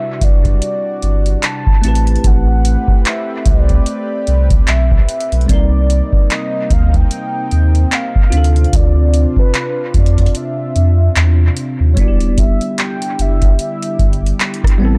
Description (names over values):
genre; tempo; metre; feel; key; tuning
contemporary R&B; 74 BPM; 4/4; swing 58% on 16ths; E phrygian; A4 = 440 Hz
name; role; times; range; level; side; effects
mellow horn-like synth lead; melody; 0.0-14.4 s; B4 to A5; -25 LUFS; equal; chorus, analog delay
bell-like tine electric piano; accompaniment; 0.0-15.0 s; G3 to B4; -26 LUFS; equal; lush chorus, analog delay
lush unison pad; sustained chords; 0.0-15.0 s; C3 to B4; -28 LUFS; equal; chorus
saturated sub bass; bass; 0.2-15.0 s; E1 to F2; -15 LUFS; equal; none
booming analog drum machine; drums; 0.2-14.8 s; handclaps, hi-hat, kick drum, rim click; -16 LUFS; equal; none
room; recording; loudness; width
digital ambience; echo-heavy mix; -14 LUFS; mono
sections
0.0-12.0 A section; 12.0-15.0 B section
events
kick muted 10.4-12.0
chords
0.0 Em9; 1.8 Am9; 5.5 Cm9; 8.3 Dm9; 12.0 Em9